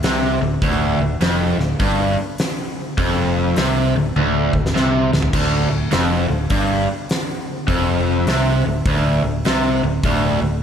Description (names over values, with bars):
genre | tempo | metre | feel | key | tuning
blues rock power trio and southern rock | 102 BPM | 4/4 | swing 64% on 8ths | D minor | A4 = 440 Hz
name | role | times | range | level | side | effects
raw garage guitar | riff | 0.0-10.6 s | D2 to C3 | -18 LUFS | equal | overdrive, spring reverb
fingered electric bass | bass | 0.0-10.6 s | D1 to C2 | -23 LUFS | equal | none
huge arena drum kit | drums | 0.0-10.2 s | crash cymbal, hi-hat, kick drum, snare drum, toms | -22 LUFS | equal | none
room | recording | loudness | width
light reverb | none | -16 LUFS | side -8 dB against mid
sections
0.0-10.6 A section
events
drum fill 4.2-5.3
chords
0.0 Dm